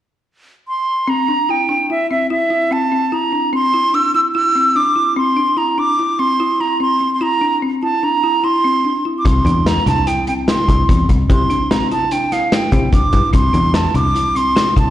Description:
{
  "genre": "progressive instrumental, band music in an uneven meter",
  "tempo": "147 BPM",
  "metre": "5/4",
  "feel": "straight",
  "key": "C mixolydian",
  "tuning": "A4 = 444 Hz",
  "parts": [
    { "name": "breathy silver concert flute", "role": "melody", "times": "0.7-14.9 s", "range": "E5 to E6", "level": "-16 LUFS", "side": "right 2 dB", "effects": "slapback echo" },
    { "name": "folk marimba with medium mallets", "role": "arpeggios", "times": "1.1-14.9 s", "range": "C4 to E4", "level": "-20 LUFS", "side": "left 2 dB", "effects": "slapback echo" },
    { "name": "picked electric bass", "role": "bass", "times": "9.3-14.9 s", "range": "C2 to C3", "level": "-17 LUFS", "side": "left 1 dB", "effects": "none" },
    { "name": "vintage drum kit", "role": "drums", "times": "9.3-14.9 s", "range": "hi-hat, kick drum, snare drum", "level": "-17 LUFS", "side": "equal", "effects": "none" }
  ],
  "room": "light reverb",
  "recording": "live gig heard through the venue's PA, recital hall reverb",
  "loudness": "-13 LUFS",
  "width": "side -12 dB against mid",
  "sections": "0.0-1.1 A section; 1.1-14.9 B section",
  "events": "none",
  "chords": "0.0 N.C.; 1.1 C"
}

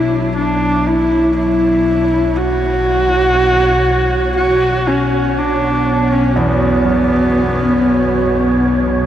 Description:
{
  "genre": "dark ambient drone",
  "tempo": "60 BPM",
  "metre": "4/4",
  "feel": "straight",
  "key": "B minor",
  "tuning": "A4 = 440 Hz",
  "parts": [
    { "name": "warm horsehead fiddle", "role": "melody", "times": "0.0-9.1 s", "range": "B3 to F#4", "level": "-14 LUFS", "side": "equal", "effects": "shimmer reverb, diffuse ambient delay" },
    { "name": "analog drone", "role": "drone", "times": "0.0-9.1 s", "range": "B1 to B2", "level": "-18 LUFS", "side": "equal", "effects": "chorus" },
    { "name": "wind-like tuned noise texture", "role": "texture", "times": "0.0-9.1 s", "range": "C#5", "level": "-24 LUFS", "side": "right 2 dB", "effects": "built-in reverb, shimmer reverb" },
    { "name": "bright concert grand piano", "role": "arpeggios", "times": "6.4-9.1 s", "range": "E2 to F#2", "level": "-20 LUFS", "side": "right 1 dB", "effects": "shimmer reverb, diffuse ambient delay" }
  ],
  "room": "wet cathedral reverb, RT60 6.9 s",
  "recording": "worn, warbling old tape, cassette tape, warbly pitch drift",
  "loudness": "-12 LUFS",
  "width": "side -11 dB against mid",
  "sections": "0.0-9.1 A section",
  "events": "fade-in on synth texture 0.0-9.1; filter sweep on synth drone 0.0-9.1",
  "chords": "0.0 B5"
}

